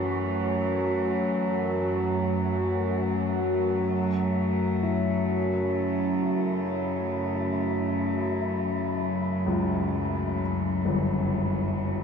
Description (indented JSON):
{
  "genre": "ambient",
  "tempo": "free time",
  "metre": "none",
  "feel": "none",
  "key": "unclear",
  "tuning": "A4 = 441 Hz",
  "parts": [
    { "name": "clear studio cello section", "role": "sustained chords", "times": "0.0-12.0 s", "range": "C#3 to A3", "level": "-31 LUFS", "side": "equal", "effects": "none" },
    { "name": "analog drone", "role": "drone", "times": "0.0-12.0 s", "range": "F#2 to F#3", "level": "-26 LUFS", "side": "equal", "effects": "chorus" },
    { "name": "wind-like tuned noise texture", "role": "texture", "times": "0.0-12.0 s", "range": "E4 to F#4", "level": "-36 LUFS", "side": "equal", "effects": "built-in reverb" },
    { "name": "dark baby grand piano", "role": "arpeggios", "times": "4.8-12.0 s", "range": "G1 to E4", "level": "-31 LUFS", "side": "left 4 dB", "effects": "analog delay" }
  ],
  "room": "wet spring reverb, RT60 2.2 s",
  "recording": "echo-heavy mix",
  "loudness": "-24 LUFS",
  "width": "side -6 dB against mid",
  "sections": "0.0-12.0 A section",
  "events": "fade-out on cello section 0.0-12.0; fade-out on synth texture 0.0-12.0",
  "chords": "0.0 F#m; 3.9 A"
}